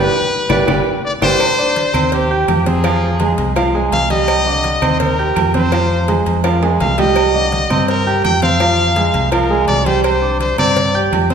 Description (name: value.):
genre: latin, salsa.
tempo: 167 BPM.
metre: 4/4.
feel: straight.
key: C minor.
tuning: A4 = 436 Hz.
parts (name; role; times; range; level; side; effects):
bright trumpet; melody; 0.0-11.3 s; G4 to G5; -18 LUFS; left 3 dB; none.
clear concert grand piano; accompaniment; 0.0-11.3 s; D3 to G6; -17 LUFS; right 3 dB; none.
fingered electric bass; bass; 0.0-11.3 s; G1 to G2; -19 LUFS; left 1 dB; none.
bongos and cowbell; percussion; 0.5-11.3 s; none; -25 LUFS; left 4 dB; none.
claves; percussion; 0.5-11.3 s; none; -30 LUFS; right 3 dB; none.
congas; percussion; 0.5-11.3 s; none; -25 LUFS; equal; none.
timbales and agogo bells; percussion; 0.5-11.3 s; none; -23 LUFS; right 7 dB; none.
room: wet scoring stage reverb, RT60 1.6 s.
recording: recorded in a church or concert hall.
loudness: -12 LUFS.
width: side -7 dB against mid.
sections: 0.0-1.4 A section; 1.4-11.3 B section.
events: band accent 0.0-1.4; drum fill 0.3-1.4, 6.4-7.2.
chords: 0.0 G; 1.4 Cmadd9; 2.8 Fm; 4.3 Cmadd9; 5.7 Fm; 7.2 Cmadd9; 8.6 Fm; 10.0 Csus2.